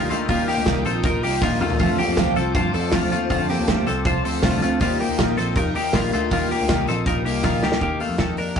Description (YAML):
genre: jangly indie pop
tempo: 159 BPM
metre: 4/4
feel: straight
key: unclear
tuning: A4 = 440 Hz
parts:
  - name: picked twelve-string acoustic guitar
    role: accompaniment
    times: 0.0-8.6 s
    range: F2 to G4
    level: -25 LUFS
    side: right 3 dB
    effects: none
  - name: phased string machine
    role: sustained chords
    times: 0.0-7.8 s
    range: F4 to Eb6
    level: -30 LUFS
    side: left 2 dB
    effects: ensemble chorus, phaser
  - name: twelve-string electric guitar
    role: arpeggios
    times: 0.0-8.6 s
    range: A3 to C5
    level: -24 LUFS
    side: left 5 dB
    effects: none
  - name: vintage muted picked electric bass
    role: bass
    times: 0.0-8.6 s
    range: Bb1 to G2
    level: -27 LUFS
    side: equal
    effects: none
  - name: loose indie drum kit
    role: drums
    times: 0.1-8.6 s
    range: hi-hat, kick drum, snare drum, toms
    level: -24 LUFS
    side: equal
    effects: none
  - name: tambourine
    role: percussion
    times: 0.1-7.7 s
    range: none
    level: -46 LUFS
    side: left 5 dB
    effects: none
room: moderate small room reverb, RT60 0.5 s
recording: rough rehearsal-room recording, tube saturation, nothing above 11.0 kHz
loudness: -18 LUFS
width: side -7 dB against mid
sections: 0.0-7.8 A section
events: drum fill 1.4-1.8, 7.4-7.8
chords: 0.0 Ebadd9; 1.8 F6; 4.8 Ebadd9